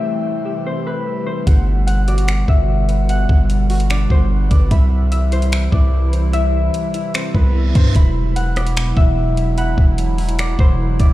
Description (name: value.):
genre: hip hop, atmospheric cloud-rap.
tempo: 148 BPM.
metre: 4/4.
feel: half-time.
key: E minor.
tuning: A4 = 440 Hz.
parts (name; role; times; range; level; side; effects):
concert harp; melody; 0.0-11.1 s; B4 to F#5; -25 LUFS; left 5 dB; low-pass filter, digital delay.
warbly tape-like pad; sustained chords; 0.0-11.1 s; B2 to F#5; -24 LUFS; right 1 dB; chorus, built-in reverb, sidechain pumping.
warbly lo-fi synth keys; arpeggios; 0.0-11.1 s; E3 to B5; -29 LUFS; right 2 dB; chorus, low-pass filter, digital delay.
kalimba; texture; 0.0-11.1 s; F#3 to B5; -38 LUFS; equal; none.
long sustained 808-style bass; bass; 1.5-11.1 s; E1 to G2; -16 LUFS; equal; none.
smooth R&B drum kit; drums; 1.5-11.1 s; finger snaps, hi-hat, kick drum, rim click; -15 LUFS; equal; none.
reverse cymbal; sound effects; 7.3-8.0 s; none; -36 LUFS; right 7 dB; none.
room: little or no reverb.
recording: played on a big sound system in a bare room, stone room reverb.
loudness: -14 LUFS.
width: side -16 dB against mid.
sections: 0.0-8.0 A section; 8.0-11.1 B section.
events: reverse cymbal 7.3-8.0.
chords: 0.0 Am7; 1.5 Gmaj7; 4.7 Cmaj7; 8.0 Esus2.